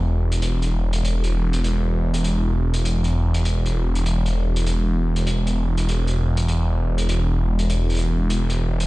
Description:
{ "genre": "glitch hop", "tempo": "99 BPM", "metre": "4/4", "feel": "swing 64% on 16ths", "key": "unclear", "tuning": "A4 = 440 Hz", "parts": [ { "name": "phased detuned saw bass", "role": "bass", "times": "0.0-8.9 s", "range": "E1", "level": "-19 LUFS", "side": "equal", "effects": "phaser, overdrive" }, { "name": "hi-hat", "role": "drums", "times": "0.3-8.9 s", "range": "none", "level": "-31 LUFS", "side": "equal", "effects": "none" } ], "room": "little or no reverb", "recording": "played on a big sound system in a bare room, stone room reverb, nothing above 10.4 kHz", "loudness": "-19 LUFS", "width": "side -19 dB against mid", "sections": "0.0-8.9 A section", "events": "none", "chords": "none" }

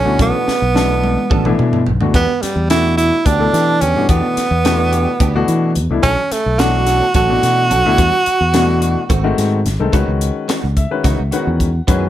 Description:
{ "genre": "electric jazz fusion", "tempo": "216 BPM (eighths)", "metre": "7/8", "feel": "straight", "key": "E dorian", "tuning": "A4 = 440 Hz", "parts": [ { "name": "clear tenor saxophone", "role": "melody", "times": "0.0-9.3 s", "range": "G3 to F#4", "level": "-16 LUFS", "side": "right 3 dB", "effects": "none" }, { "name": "warm baby grand piano", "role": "accompaniment", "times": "0.0-12.1 s", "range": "B2 to F#5", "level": "-20 LUFS", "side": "left 5 dB", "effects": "none" }, { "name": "direct-recorded clean electric guitar", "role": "stabs", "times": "0.0-12.0 s", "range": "D#3 to A4", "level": "-24 LUFS", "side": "right 5 dB", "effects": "ensemble chorus" }, { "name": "fingered electric bass", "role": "bass", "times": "0.0-12.1 s", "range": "G#1 to E3", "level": "-17 LUFS", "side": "equal", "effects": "none" }, { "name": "crisp fusion drum kit", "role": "drums", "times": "0.2-12.0 s", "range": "hi-hat, kick drum, snare drum, toms", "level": "-19 LUFS", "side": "left 1 dB", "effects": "none" } ], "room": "light reverb", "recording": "none", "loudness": "-12 LUFS", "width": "side -12 dB against mid", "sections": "0.0-9.9 A section; 9.9-12.1 B section", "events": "drum fill 0.5-2.1", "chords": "0.0 Bm9; 2.1 Em7; 6.0 Bm9; 8.0 Em9; 9.1 G#7b9; 9.9 C#m11" }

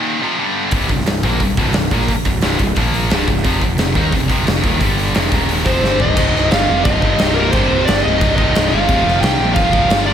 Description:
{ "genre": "heavy metal", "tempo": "176 BPM", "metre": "4/4", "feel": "straight", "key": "C minor", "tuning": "A4 = 439 Hz", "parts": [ { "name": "heavy high-gain guitar", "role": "riff", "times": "0.0-10.1 s", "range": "C2 to Eb4", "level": "-20 LUFS", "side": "left 9 dB", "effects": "distortion" }, { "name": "heavy high-gain guitar", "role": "riff", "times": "0.0-10.1 s", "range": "C2 to Eb4", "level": "-21 LUFS", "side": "right 10 dB", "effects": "distortion" }, { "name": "fuzz picked electric bass", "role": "bass", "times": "0.7-10.1 s", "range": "C1 to Eb2", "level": "-20 LUFS", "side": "equal", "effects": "overdrive" }, { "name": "big rock drum kit", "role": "drums", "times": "0.7-10.0 s", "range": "crash cymbal, hi-hat, kick drum, snare drum, toms", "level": "-17 LUFS", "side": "equal", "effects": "none" }, { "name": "smooth overdriven lead guitar", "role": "melody", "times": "5.7-10.1 s", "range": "Bb4 to G5", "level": "-18 LUFS", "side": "equal", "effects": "digital delay" }, { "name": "high-gain lead guitar", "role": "second line", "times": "5.7-10.1 s", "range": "Bb3 to G4", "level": "-25 LUFS", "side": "right 3 dB", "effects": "none" } ], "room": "moderate lush hall reverb, RT60 2.3 s", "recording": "big arena sound", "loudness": "-13 LUFS", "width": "side -9 dB against mid", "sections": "0.0-6.2 A section; 6.2-10.1 B section", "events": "drum fill 5.8-6.2", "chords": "0.2 F5; 0.4 G5; 0.7 C5; 2.8 Bb5; 3.1 C5; 3.5 F5; 4.8 G5; 5.2 F5; 5.3 Eb5; 5.7 F5; 5.8 G5; 6.2 Cm; 8.9 F5" }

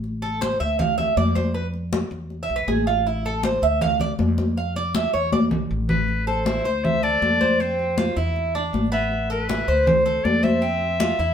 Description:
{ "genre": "latin, Cuban son and guajira", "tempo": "159 BPM", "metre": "4/4", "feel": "straight", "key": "A minor", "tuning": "A4 = 440 Hz", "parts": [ { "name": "upright bass", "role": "bass", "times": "0.0-11.3 s", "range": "A1 to F2", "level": "-26 LUFS", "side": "equal", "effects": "none" }, { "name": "congas", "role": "percussion", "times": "0.0-11.3 s", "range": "none", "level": "-24 LUFS", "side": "left 2 dB", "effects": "none" }, { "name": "Cuban tres", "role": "arpeggios", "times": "0.2-11.3 s", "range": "B3 to F5", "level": "-23 LUFS", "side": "right 2 dB", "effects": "none" }, { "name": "clear clarinet", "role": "melody", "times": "5.9-11.3 s", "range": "B4 to E5", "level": "-23 LUFS", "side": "left 1 dB", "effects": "none" } ], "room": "moderate studio reverb, RT60 0.8 s", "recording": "band playing live in one room", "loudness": "-19 LUFS", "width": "side -8 dB against mid", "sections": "0.0-6.1 A section; 6.1-11.3 B section", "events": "Cuban tres solo 0.0-6.1; drum fill 5.3-6.1", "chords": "0.0 Amadd11; 0.8 Dm; 1.5 E5; 3.1 Amadd11; 3.8 Dm; 4.6 Dmadd9; 5.3 E5; 6.1 Am; 6.8 Dm7; 7.6 F5; 8.4 E5; 9.1 Amadd9; 9.9 Dm7; 10.6 F5" }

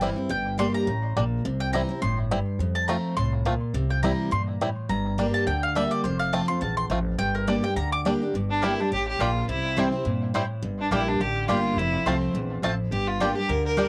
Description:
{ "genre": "bluegrass", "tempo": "209 BPM", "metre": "4/4", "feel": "swing 55% on 8ths", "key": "G dorian", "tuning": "A4 = 442 Hz", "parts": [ { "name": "bluegrass banjo", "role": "melody", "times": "0.0-13.8 s", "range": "G3 to F4", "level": "-32 LUFS", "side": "equal", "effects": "cassette tape, tape echo" }, { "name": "picked steel-string acoustic guitar", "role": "accompaniment", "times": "0.0-13.9 s", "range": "E2 to G4", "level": "-29 LUFS", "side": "equal", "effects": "none" }, { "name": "upright bass", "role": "bass", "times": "0.0-13.9 s", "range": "F1 to G2", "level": "-33 LUFS", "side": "equal", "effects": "transformer saturation" }, { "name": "mandolin", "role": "stabs", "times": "0.3-13.9 s", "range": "Bb3 to D6", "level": "-32 LUFS", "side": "equal", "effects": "none" }, { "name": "clear fiddle", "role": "melody", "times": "8.5-13.9 s", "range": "C4 to Bb4", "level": "-30 LUFS", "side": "equal", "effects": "cassette tape" } ], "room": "moderate booth ambience, RT60 0.2 s", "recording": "home recording on cassette", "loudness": "-26 LUFS", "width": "mono", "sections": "0.0-8.3 A section; 8.3-13.9 B section", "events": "mandolin solo 0.0-8.3", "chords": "0.3 Gm; 1.4 C; 2.6 F; 3.7 C; 4.9 Gm; 6.0 F; 7.2 Gm; 9.5 C; 10.6 Gm; 11.8 F; 12.9 Gm" }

